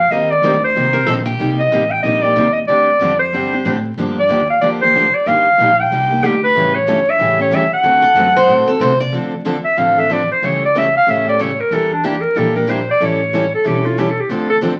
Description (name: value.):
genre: acoustic string swing (jazz manouche).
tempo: 186 BPM.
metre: 4/4.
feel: swing 59% on 8ths.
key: D minor from 9.1 s.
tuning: A4 = 440 Hz.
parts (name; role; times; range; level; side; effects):
clear clarinet; melody; 0.0-14.6 s; D4 to G5; -16 LUFS; equal; none.
upright bass; bass; 0.0-14.8 s; E1 to C3; -26 LUFS; equal; none.
picked steel-string acoustic guitar; accompaniment; 0.1-14.7 s; C3 to Bb4; -23 LUFS; equal; none.
picked steel-string acoustic guitar; accompaniment; 0.1-14.7 s; C3 to C#5; -28 LUFS; equal; none.
picked steel-string acoustic guitar; second line; 0.9-1.5, 8.0-9.1 s; G4 to D5; -19 LUFS; equal; none.
room: wet studio reverb, RT60 0.7 s.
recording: very old 78 rpm record, vinyl crackle.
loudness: -15 LUFS.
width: mono.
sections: 0.0-9.1 A section; 9.1-14.8 B section.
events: clarinet solo 9.1-14.8.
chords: 0.1 Eb6; 1.4 Cm7; 2.7 D7sus4; 4.0 Gm7; 5.3 Ebmaj7/G; 6.6 A7; 7.8 D7; 9.1 Dm7; 10.4 A7/C#; 11.7 Em7b5; 13.0 A7; 14.3 Dm7.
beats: | 0.10 0.43 0.75 1.07 | 1.40 1.72 2.04 2.37 | 2.69 3.01 3.33 3.65 | 3.98 4.30 4.62 4.94 | 5.27 5.59 5.91 6.23 | 6.55 6.88 7.20 7.52 | 7.84 8.16 8.49 8.81 | 9.13 9.45 9.77 10.10 | 10.42 10.74 11.06 11.39 | 11.71 12.03 12.36 12.68 | 13.00 13.32 13.65 13.97 | 14.29 14.62.